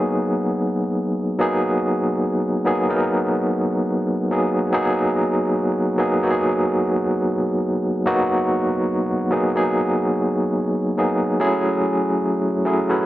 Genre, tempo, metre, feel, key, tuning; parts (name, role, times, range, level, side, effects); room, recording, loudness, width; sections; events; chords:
R&B; 72 BPM; 4/4; swing 59% on 16ths; G# minor; A4 = 440 Hz
overdriven tine electric piano; solo; 0.0-13.1 s; F#3 to B4; -18 LUFS; equal; fast tremolo
light reverb, digital ambience; -18 LUFS; side -15 dB against mid
0.0-13.1 A section
0.0 G#m9; 11.4 F#m9